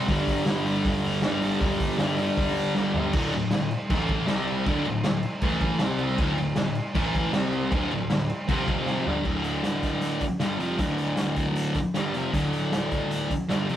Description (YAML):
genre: garage rock duo or trio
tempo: 157 BPM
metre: 4/4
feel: straight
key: unclear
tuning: A4 = 440 Hz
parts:
  - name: thick fuzz guitar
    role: riff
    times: 0.0-13.8 s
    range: D2 to C4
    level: -25 LUFS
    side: equal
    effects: distortion
  - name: fuzz picked electric bass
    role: bass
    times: 0.0-13.8 s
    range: D1 to D2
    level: -36 LUFS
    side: equal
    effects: none
  - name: raw garage drum kit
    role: drums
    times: 0.1-13.8 s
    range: crash cymbal, hi-hat, kick drum, snare drum, toms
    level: -28 LUFS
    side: equal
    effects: none
room: moderate studio reverb, RT60 0.5 s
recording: rough rehearsal-room recording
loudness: -23 LUFS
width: side -11 dB against mid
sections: 0.0-3.1 A section; 3.1-9.3 B section; 9.3-13.8 C section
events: drum fill 2.8-3.1, 8.9-9.3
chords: 0.1 G5; 3.1 D5; 3.9 A5; 4.3 C5; 4.7 D5; 5.4 A5; 5.8 C5; 6.2 D5; 7.0 A5; 7.3 C5; 7.7 D5; 8.5 F5; 9.1 G5; 9.3 D5